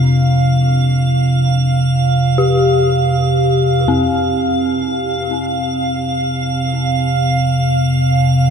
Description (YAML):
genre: dark ambient drone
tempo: free time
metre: none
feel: none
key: unclear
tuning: A4 = 441 Hz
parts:
  - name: dark detuned synth bell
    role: arpeggios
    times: 0.0-8.5 s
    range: C4 to G4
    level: -20 LUFS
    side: left 2 dB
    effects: chorus, diffuse ambient delay
  - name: deep rumbling drone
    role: drone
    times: 0.0-8.5 s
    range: F2 to C3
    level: -15 LUFS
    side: equal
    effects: built-in reverb
  - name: icy glass pad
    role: texture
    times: 0.0-8.5 s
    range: F5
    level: -19 LUFS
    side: right 3 dB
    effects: chorus, built-in reverb
room: wet huge ambient reverb, RT60 9.5 s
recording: in a vast, echoing space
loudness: -13 LUFS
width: side -7 dB against mid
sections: 0.0-3.9 A section; 3.9-8.5 A section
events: filter sweep on synth drone 3.9-8.5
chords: 0.0 Dm7/F; 3.9 F5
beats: free time